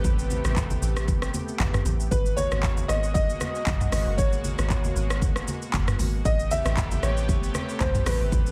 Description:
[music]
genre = amapiano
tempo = 116 BPM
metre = 4/4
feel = swing 55% on 16ths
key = unclear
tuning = A4 = 440 Hz
[part]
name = dark grand piano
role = melody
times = 0.0-8.5 s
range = B4 to E5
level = -33 LUFS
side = equal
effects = tape echo
[part]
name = lush unison pad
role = sustained chords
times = 0.0-8.5 s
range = B2 to G4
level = -37 LUFS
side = equal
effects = chorus, sidechain pumping
[part]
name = deep log drum bass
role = bass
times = 0.0-8.5 s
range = F#1 to B1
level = -29 LUFS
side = equal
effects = none
[part]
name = afro-pop drum kit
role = drums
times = 0.0-8.5 s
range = handclaps, hi-hat, kick drum, rim click, shaker, toms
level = -29 LUFS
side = equal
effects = none
[part]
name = congas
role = percussion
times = 0.1-8.5 s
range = none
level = -35 LUFS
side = equal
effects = none
[sound]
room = digital ambience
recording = none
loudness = -25 LUFS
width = mono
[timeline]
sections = 0.0-8.5 A section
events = none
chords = 0.0 Am9; 2.1 G#m9; 6.3 Am9

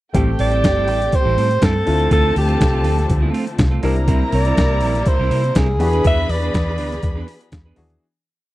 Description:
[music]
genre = disco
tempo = 122 BPM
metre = 4/4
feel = straight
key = unclear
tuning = A4 = 440 Hz
[part]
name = dark studio violin section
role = second line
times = 0.1-7.7 s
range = G4 to B5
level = -27 LUFS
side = left 1 dB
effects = none
[part]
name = clean electric guitar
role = accompaniment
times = 0.1-7.9 s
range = G3 to B4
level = -25 LUFS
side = right 6 dB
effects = none
[part]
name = clear concert grand piano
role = accompaniment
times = 0.1-8.0 s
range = C3 to Bb4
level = -27 LUFS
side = left 2 dB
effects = none
[part]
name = clear studio string section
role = sustained chords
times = 0.1-8.0 s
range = C3 to G#4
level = -29 LUFS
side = left 2 dB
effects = none
[part]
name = vintage muted fingered electric bass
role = bass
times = 0.1-8.0 s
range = G1 to C3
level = -19 LUFS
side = equal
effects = none
[part]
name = boom bap sampler-style drum kit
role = drums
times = 0.1-8.0 s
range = hi-hat, kick drum, snare drum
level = -19 LUFS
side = equal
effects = none
[part]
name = breathy alto saxophone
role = melody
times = 0.4-7.3 s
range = G4 to E5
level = -20 LUFS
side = right 1 dB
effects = slapback echo
[sound]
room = little or no reverb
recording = dry, close 1970s-style studio recording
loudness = -15 LUFS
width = side -16 dB against mid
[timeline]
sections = 0.1-8.0 pre-chorus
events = fade-out 6.0-8.0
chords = 0.1 Am7; 1.9 Dm7; 3.8 C7; 5.8 E7

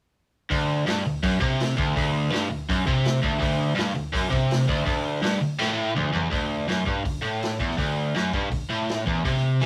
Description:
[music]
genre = garage rock duo or trio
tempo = 165 BPM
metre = 4/4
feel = straight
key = D mixolydian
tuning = A4 = 441 Hz
[part]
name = crunchy overdriven guitar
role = riff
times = 0.5-9.7 s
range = D2 to E3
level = -25 LUFS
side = equal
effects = none
[part]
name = vintage drum kit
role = drums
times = 0.5-9.7 s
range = hi-hat, kick drum, snare drum, toms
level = -32 LUFS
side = equal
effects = none
[sound]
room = light reverb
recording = rough rehearsal-room recording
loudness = -25 LUFS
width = mono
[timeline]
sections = 0.5-6.3 A section; 6.3-9.7 B section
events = drum fill 5.6-6.3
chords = none

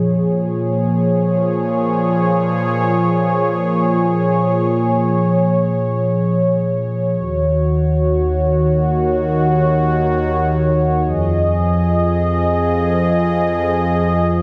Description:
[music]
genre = hip hop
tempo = free time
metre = none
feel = none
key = Bb minor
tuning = A4 = 438 Hz
[part]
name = sweeping resonant pad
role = solo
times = 0.0-14.4 s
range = Eb2 to Eb5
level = -17 LUFS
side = equal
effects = chorus
[sound]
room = moderate studio ambience, RT60 0.5 s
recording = none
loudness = -17 LUFS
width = mono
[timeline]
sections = 0.0-14.4 A section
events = none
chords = 0.0 Bbm7; 7.2 Ebm7; 11.1 Fm7

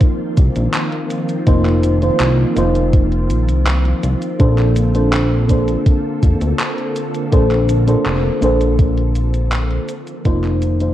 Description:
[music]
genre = vaporwave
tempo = 82 BPM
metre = 4/4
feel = straight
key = Bb major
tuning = A4 = 436 Hz
[part]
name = mellow FM electric piano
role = accompaniment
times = 0.0-10.9 s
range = Bb3 to C5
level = -19 LUFS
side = equal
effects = lush chorus, analog delay
[part]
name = soft string machine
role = sustained chords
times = 0.0-10.9 s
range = D3 to A4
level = -24 LUFS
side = left 1 dB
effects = ensemble chorus
[part]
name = electronic kick drum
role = drums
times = 0.0-10.4 s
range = none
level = -13 LUFS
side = equal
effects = studio reverb
[part]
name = gated 80s digital drum machine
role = drums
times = 0.0-10.9 s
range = cabasa, handclaps, hi-hat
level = -25 LUFS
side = equal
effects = gated reverb, studio reverb
[part]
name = chorused synth bass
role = bass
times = 0.4-10.9 s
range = F1 to D2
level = -16 LUFS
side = equal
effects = none
[sound]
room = light reverb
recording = dark, warm production, cassette tape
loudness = -13 LUFS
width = side -13 dB against mid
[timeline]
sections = 0.0-10.9 A section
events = fade-out 8.3-10.9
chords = 0.0 F7sus4; 4.4 Bbmaj9; 9.9 F7sus4

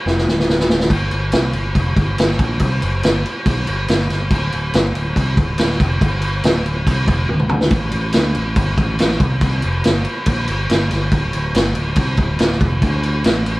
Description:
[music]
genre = blues rock power trio and southern rock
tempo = 141 BPM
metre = 4/4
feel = straight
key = unclear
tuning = A4 = 440 Hz
[part]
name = picked electric bass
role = bass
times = 0.1-13.6 s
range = D1 to D2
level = -20 LUFS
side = equal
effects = none
[part]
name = vintage drum kit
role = drums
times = 0.1-13.6 s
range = crash cymbal, kick drum, snare drum, toms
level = -16 LUFS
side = equal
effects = none
[sound]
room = light reverb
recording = band playing live in one room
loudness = -15 LUFS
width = side -20 dB against mid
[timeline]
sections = 0.0-13.6 A section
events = drum fill 0.1-0.9, 7.3-7.7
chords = none

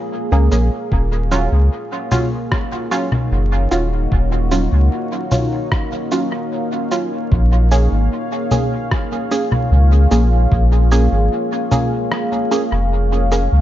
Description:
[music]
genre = ambient dub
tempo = 75 BPM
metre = 4/4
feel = straight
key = Eb minor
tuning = A4 = 440 Hz
[part]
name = deep dark ambient pad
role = sustained chords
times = 0.0-13.6 s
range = Bb3 to F5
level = -22 LUFS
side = equal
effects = chorus, built-in reverb
[part]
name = filtered dub chord stab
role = stabs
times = 0.3-13.5 s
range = Gb3 to Ab4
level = -22 LUFS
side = right 2 dB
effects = chorus, dub echo
[part]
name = warm sub bass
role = bass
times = 0.3-13.6 s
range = Eb1 to Db2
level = -14 LUFS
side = equal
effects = none
[part]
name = electronic cabasa, congas and rim click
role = drums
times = 0.5-13.5 s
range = none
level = -22 LUFS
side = left 1 dB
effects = studio reverb, dub echo
[part]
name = electronic kick drum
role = drums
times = 0.9-10.7 s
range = none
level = -18 LUFS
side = equal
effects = studio reverb
[sound]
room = light reverb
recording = echo-heavy mix, vinyl crackle, nothing above 7.6 kHz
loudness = -14 LUFS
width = side -13 dB against mid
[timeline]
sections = 0.0-13.6 A section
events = kick drops out 12.1-13.6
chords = 0.0 Bbm7; 0.9 Ebm9; 7.3 Bbm7

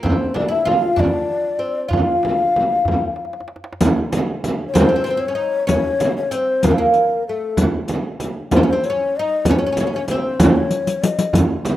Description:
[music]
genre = Persian modal ensemble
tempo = 64 BPM (dotted quarters)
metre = 6/8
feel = straight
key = unclear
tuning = A4 = 440 Hz
[part]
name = oud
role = melody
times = 0.0-11.3 s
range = A3 to F4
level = -23 LUFS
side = right 2 dB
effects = none
[part]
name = breathy mellow low ney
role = second line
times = 0.0-11.3 s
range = A4 to F5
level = -20 LUFS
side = left 4 dB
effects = none
[part]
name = tombak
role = percussion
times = 0.0-3.8, 11.3-11.8 s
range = none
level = -25 LUFS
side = equal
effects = none
[part]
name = frame drum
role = percussion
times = 0.1-11.8 s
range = none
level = -18 LUFS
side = right 1 dB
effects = none
[part]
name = riq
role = percussion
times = 3.8-11.8 s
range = none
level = -22 LUFS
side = left 3 dB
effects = none
[sound]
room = studio reverb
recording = rough home demo mix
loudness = -16 LUFS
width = side -13 dB against mid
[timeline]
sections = 0.0-3.8 A section; 3.8-11.8 B section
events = drum fill 3.2-3.8, 10.7-11.3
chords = none

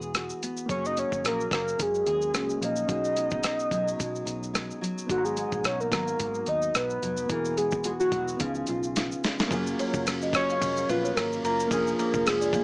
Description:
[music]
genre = indie pop, bedroom pop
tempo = 109 BPM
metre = 4/4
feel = swing 55% on 16ths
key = F# major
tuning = A4 = 438 Hz
[part]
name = warbly nostalgic lead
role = melody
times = 0.0-12.6 s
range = E#4 to D#5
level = -27 LUFS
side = equal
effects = wide subtle chorus
[part]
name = nylon-string guitar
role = accompaniment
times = 0.0-12.6 s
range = G#2 to G#4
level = -33 LUFS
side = equal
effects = lush chorus, vibrato effect
[part]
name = vintage muted picked electric bass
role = bass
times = 0.0-12.6 s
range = E1 to B2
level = -39 LUFS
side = equal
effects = none
[part]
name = dusty soul sampler-style drum kit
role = drums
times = 0.0-12.6 s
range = hi-hat, kick drum, ride cymbal, rim click, shaker, snare drum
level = -30 LUFS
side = equal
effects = overdrive
[part]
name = barky reed electric piano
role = accompaniment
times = 0.7-12.6 s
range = A#3 to A#5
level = -35 LUFS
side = equal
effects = overdrive
[part]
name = buzzing kalimba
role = second line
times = 9.5-12.5 s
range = C#4 to E#5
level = -34 LUFS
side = right 1 dB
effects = ensemble chorus, tape echo
[sound]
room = moderate studio reverb, RT60 0.6 s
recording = small speaker sound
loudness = -25 LUFS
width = side -26 dB against mid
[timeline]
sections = 0.0-9.5 A section; 9.5-12.6 B section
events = drum fill 9.0-9.5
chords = 0.0 Eadd9; 0.7 F#add9; 2.9 B6; 5.1 G#m7; 7.3 Eadd9; 8.4 C#7; 9.5 F#maj7; 11.7 A#7/E#

